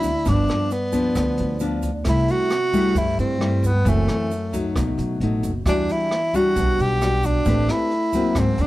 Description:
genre	bossa nova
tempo	133 BPM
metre	4/4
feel	straight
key	G major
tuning	A4 = 442 Hz
part	warm tenor saxophone	melody	0.0-8.7 s	A3 to G4	-22 LUFS	right 1 dB	none
part	nylon-string guitar	accompaniment	0.0-8.7 s	F#2 to B4	-23 LUFS	left 2 dB	none
part	upright bass	bass	0.0-8.7 s	F#1 to G2	-23 LUFS	right 1 dB	none
part	jazz brush drum kit	drums	0.0-8.7 s	hi-hat, kick drum, rim click	-28 LUFS	right 1 dB	none
part	tube shaker	percussion	0.0-8.7 s	none	-43 LUFS	right 6 dB	none
room	little or no reverb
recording	dark, warm production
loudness	-18 LUFS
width	side -16 dB against mid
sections	0.0-8.7 A section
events	none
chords	0.3 G7; 2.1 C6; 3.9 F#m7b5; 4.8 B7; 5.7 Em9; 7.5 Am9

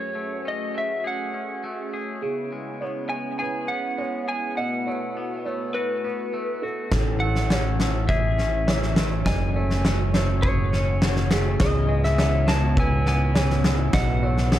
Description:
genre	post-rock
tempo	102 BPM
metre	4/4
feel	straight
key	F# dorian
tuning	A4 = 435 Hz
part	lightly driven lead guitar	melody	0.0-14.6 s	B4 to A5	-29 LUFS	equal	digital delay
part	brassy analog pad	sustained chords	0.0-14.6 s	A3 to C#5	-32 LUFS	equal	chorus
part	twangy electric guitar	arpeggios	0.0-14.6 s	F#2 to G#4	-33 LUFS	left 2 dB	digital delay
part	felt-muted upright piano	arpeggios	2.2-14.6 s	G#4 to D#5	-33 LUFS	right 3 dB	digital delay
part	growling fingered electric bass	bass	6.9-14.6 s	F#1 to C#2	-23 LUFS	equal	overdrive
part	huge arena drum kit	drums	6.9-14.6 s	kick drum, snare drum	-23 LUFS	equal	none
room	small room ambience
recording	dark, warm production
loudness	-21 LUFS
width	side -12 dB against mid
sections	0.0-6.9 A section; 6.9-14.6 B section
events	none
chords	0.0 F#madd9; 2.2 C#m7; 4.6 B7sus4; 6.9 Amaj7; 9.3 F#madd9; 11.6 C#m7; 13.9 B7sus4

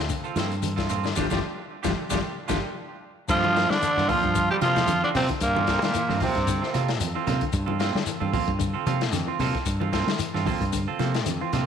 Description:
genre	afrobeat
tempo	113 BPM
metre	4/4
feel	swing 55% on 16ths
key	G dorian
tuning	A4 = 440 Hz
part	clean electric guitar	arpeggios	0.0-11.6 s	D3 to G3	-33 LUFS	left 9 dB	none
part	fingered electric bass	bass	0.0-11.7 s	G1 to G3	-28 LUFS	equal	none
part	crunchy breakbeat drum kit	drums	0.1-11.7 s	crash cymbal, hi-hat, kick drum, snare drum	-31 LUFS	left 5 dB	none
part	congas	percussion	0.1-11.7 s	none	-33 LUFS	right 8 dB	none
part	shekere	percussion	0.1-11.7 s	none	-35 LUFS	left 5 dB	none
part	semi-hollow electric guitar	stabs	0.2-11.7 s	Bb3 to A4	-30 LUFS	right 10 dB	spring reverb, tape echo
part	breathy tenor saxophone	melody	3.3-6.7 s	Bb3 to G4	-24 LUFS	equal	none
part	muted trombone section	second line	3.3-6.7 s	Bb2 to G3	-30 LUFS	equal	none
part	warm cello	second line	3.3-6.7 s	Bb2 to G3	-33 LUFS	right 10 dB	none
room	moderate echo chamber reverb, RT60 1.4 s, studio ambience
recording	1960s-style stereo with parts hard left and right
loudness	-22 LUFS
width	side -8 dB against mid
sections	0.0-3.3 A section; 3.3-11.7 B section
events	band accent 1.2-3.3; drum fill 3.0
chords	0.0 G9sus4; 3.3 Gm11

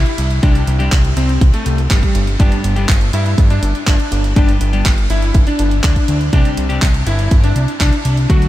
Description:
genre	italo disco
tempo	122 BPM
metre	4/4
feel	straight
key	unclear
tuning	A4 = 440 Hz
part	clear electric grand piano	melody	0.0-8.5 s	G3 to F#4	-21 LUFS	left 1 dB	ensemble chorus, tape echo
part	fat analog bass	bass	0.0-8.5 s	G1 to G2	-16 LUFS	equal	none
part	house drum kit	drums	0.1-8.5 s	handclaps, hi-hat	-23 LUFS	right 1 dB	none
part	clean electric guitar	stabs	0.4-8.5 s	G2 to G4	-25 LUFS	left 2 dB	tape echo
part	electronic kick drum	drums	0.4-8.4 s	none	-13 LUFS	equal	none
room	light reverb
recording	none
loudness	-12 LUFS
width	side -14 dB against mid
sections	0.0-8.5 A section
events	none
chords	0.0 Csus2; 2.4 G; 6.3 Csus2

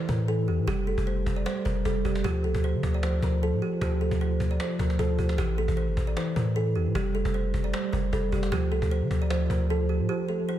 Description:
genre	hip hop, trap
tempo	153 BPM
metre	4/4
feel	half-time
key	unclear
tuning	A4 = 440 Hz
part	kalimba	melody	0.0-10.6 s	G4 to D5	-31 LUFS	right 1 dB	tape echo
part	mellow tine electric piano	accompaniment	0.0-10.6 s	E3 to A3	-30 LUFS	right 2 dB	ensemble chorus
part	long sustained 808-style bass	bass	0.1-10.1 s	F1 to D3	-27 LUFS	equal	none
part	cajon	drums	0.1-9.9 s	none	-35 LUFS	left 1 dB	vintage 12-bit sampler grit
room	light reverb, small room ambience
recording	faint mains hum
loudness	-24 LUFS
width	side -12 dB against mid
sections	0.0-10.6 A section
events	break 10.1-10.6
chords	0.0 A5; 0.7 Fadd9; 2.2 Dm7; 5.4 A5; 7.0 Fadd9; 8.5 Dm7

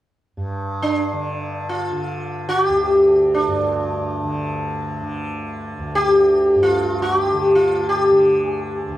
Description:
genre	indian classical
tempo	free time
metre	none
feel	none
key	unclear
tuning	A4 = 440 Hz
part	tanpura	drone	0.4-9.0 s	D2 to D3	-26 LUFS	equal	none
part	sitar	melody	0.8-9.0 s	D4 to G4	-16 LUFS	equal	none
room	light reverb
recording	dark, warm production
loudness	-16 LUFS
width	side -14 dB against mid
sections	0.4-9.0 A section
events	none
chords	none

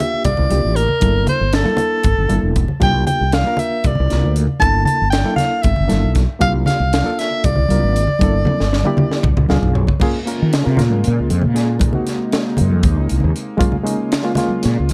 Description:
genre	electric jazz fusion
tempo	234 BPM (eighths)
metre	7/8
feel	straight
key	G dorian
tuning	A4 = 444 Hz
part	clear soprano saxophone	melody	0.0-9.5 s	A4 to A5	-22 LUFS	equal	none
part	barky reed electric piano	accompaniment	0.0-14.9 s	Ab3 to E#5	-25 LUFS	equal	overdrive, fast tremolo
part	congas	percussion	0.0-14.6 s	none	-24 LUFS	equal	none
part	crisp fusion drum kit	drums	0.2-14.9 s	crash cymbal, hi-hat, kick drum, snare drum, toms	-22 LUFS	equal	none
part	fretless electric bass	bass	0.3-14.9 s	E1 to Eb3	-19 LUFS	equal	analog chorus
part	chorused pulse-width pad	sustained chords	10.0-14.9 s	C3 to F4	-28 LUFS	equal	none
room	light reverb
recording	dark, warm production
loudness	-16 LUFS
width	mono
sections	0.0-10.0 A section; 10.0-14.9 B section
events	drum fill 8.5-10.0; reed electric piano fill 9.2-10.0; fretless electric bass solo 10.0-14.9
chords	0.0 C9sus4; 1.0 Gm69; 2.8 C9sus4; 4.6 Gm69; 6.4 C9sus4; 8.2 Gm69; 9.2 C#7b9; 10.0 Db6; 11.8 Ab9; 13.6 Db69

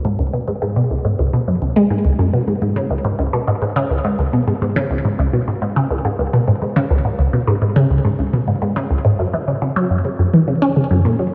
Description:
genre	ambient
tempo	105 BPM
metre	4/4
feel	straight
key	unclear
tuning	A4 = 440 Hz
part	resonant blip pluck	solo	0.0-11.3 s	C#2 to C#4	-17 LUFS	equal	phaser, lush chorus, delay
room	wet plate reverb, RT60 3.7 s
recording	dreamy mix soaked in reverb, cassette tape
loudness	-18 LUFS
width	mono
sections	0.0-11.3 A section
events	none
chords	none

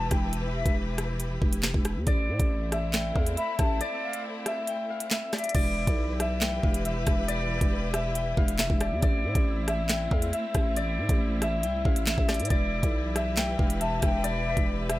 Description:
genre	hip hop, drill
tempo	138 BPM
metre	4/4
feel	half-time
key	E phrygian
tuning	A4 = 445 Hz
part	Celtic harp	melody	0.0-15.0 s	D5 to G5	-31 LUFS	left 1 dB	low-pass filter
part	mellow concert flute	second line	0.0-0.8, 3.4-5.5, 13.8-14.7 s	E5 to B5	-35 LUFS	left 3 dB	tape echo
part	clear symphonic string section	sustained chords	0.0-15.0 s	E3 to B4	-36 LUFS	left 1 dB	none
part	growling 808-style bass	bass	0.0-15.0 s	E1 to A2	-30 LUFS	equal	none
part	drill drum kit	drums	0.1-15.0 s	crash cymbal, handclaps, hi-hat, kick drum, rim click, snare drum	-26 LUFS	equal	none
room	small room ambience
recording	none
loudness	-24 LUFS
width	side -16 dB against mid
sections	0.0-5.5 A section; 5.5-15.0 B section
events	break 0.0-2.1, 3.8-5.5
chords	0.0 Em; 2.1 Am; 5.5 Em; 9.0 Am; 12.5 Em

